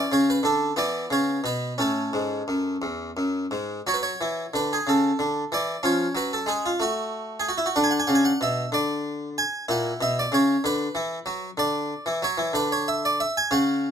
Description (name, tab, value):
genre	classical, baroque-style suite movement for harpsichord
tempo	57-64 BPM (dotted quarters)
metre	6/8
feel	rubato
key	A major, F# minor from 3.9 s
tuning	A4 = 440 Hz
part	harpsichord	solo	0.0-13.9 s	E2 to G#5	-22 LUFS	equal	none
room	little or no reverb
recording	close, detailed microphones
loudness	-22 LUFS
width	side -8 dB against mid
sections	0.0-3.9 A section; 3.9-13.9 A section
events	none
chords	0.0 Bm9/C#; 0.8 E5; 1.8 A; 3.9 F#m; 5.8 C#/E#; 6.8 N.C.; 7.8 Bm; 9.7 A#dim; 10.6 Dmaj9; 12.5 N.C.